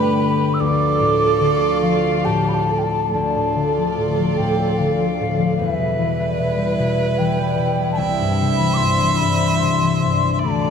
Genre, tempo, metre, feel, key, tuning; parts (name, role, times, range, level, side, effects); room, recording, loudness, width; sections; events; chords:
celtic folk, Celtic slow air; 74 BPM; 3/4; rubato; D dorian; A4 = 440 Hz
mellow hollow wooden flute; melody; 0.0-10.7 s; E5 to E6; -22 LUFS; left 1 dB; ping-pong delay
warm viola; second line; 0.0-10.7 s; G4 to E5; -23 LUFS; right 6 dB
concert harp; accompaniment; 0.0-10.7 s; C2 to B4; -20 LUFS; left 4 dB
warm studio string section; sustained chords; 0.0-10.7 s; F3 to D5; -26 LUFS; right 2 dB
moderate plate reverb, RT60 2.8 s; dreamy mix soaked in reverb; -16 LUFS; side -6 dB against mid
0.0-3.1 A section; 3.1-10.7 B section
0.0 Gadd9; 0.6 Dm; 5.6 Em; 8.0 C